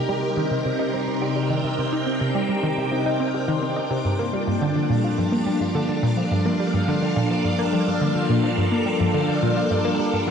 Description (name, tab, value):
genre	ambient, sequencer-driven space music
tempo	106 BPM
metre	4/4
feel	straight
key	G minor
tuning	A4 = 444 Hz
part	phased string machine	sustained chords	0.0-10.3 s	C3 to Bb5	-25 LUFS	right 1 dB	ensemble chorus, phaser
part	concert harp	arpeggios	0.0-10.3 s	F3 to C5	-26 LUFS	moving between left 8 dB and right 1 dB	auto-pan, tape echo
part	bubbling stepped-filter texture	texture	0.0-10.3 s	D4 to D6	-35 LUFS	equal	chorus, built-in reverb
part	analog pluck	riff	0.1-10.3 s	G2 to Eb4	-24 LUFS	right 1 dB	chorus, phaser, tape echo
room	moderate plate reverb, RT60 2.7 s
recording	none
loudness	-20 LUFS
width	side -7 dB against mid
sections	0.0-10.3 A section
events	fade-in on synth texture 0.0-10.3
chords	0.0 Cm; 4.0 Gm7